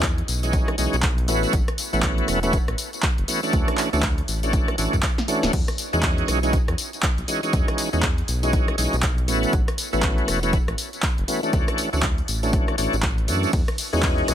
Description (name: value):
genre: deep house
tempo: 120 BPM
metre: 4/4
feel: swing 60% on 16ths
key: E major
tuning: A4 = 440 Hz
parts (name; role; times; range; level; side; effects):
- bright tonewheel organ; stabs; 0.0-14.3 s; E3 to F#4; -24 LUFS; equal; overdrive, chorus vibrato, slow rotary speaker, sidechain pumping, dub echo
- round analog bass; bass; 0.0-14.3 s; D1 to F#2; -25 LUFS; equal; sidechain pumping
- electronic kick drum; drums; 0.0-14.2 s; none; -23 LUFS; equal; none
- punchy analog drum machine; drums; 0.0-14.3 s; crash cymbal, handclaps, hi-hat, ride cymbal, rim click, snare drum, tambourine; -27 LUFS; equal; none
room: little or no reverb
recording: none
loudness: -20 LUFS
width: side -10 dB against mid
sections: 0.0-14.3 A section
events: drum fill 5.2-5.5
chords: 0.0 Emaj13; 1.3 A69; 3.5 Dmaj9; 5.5 Emaj13; 9.3 A69; 11.5 Dmaj9; 13.5 Emaj13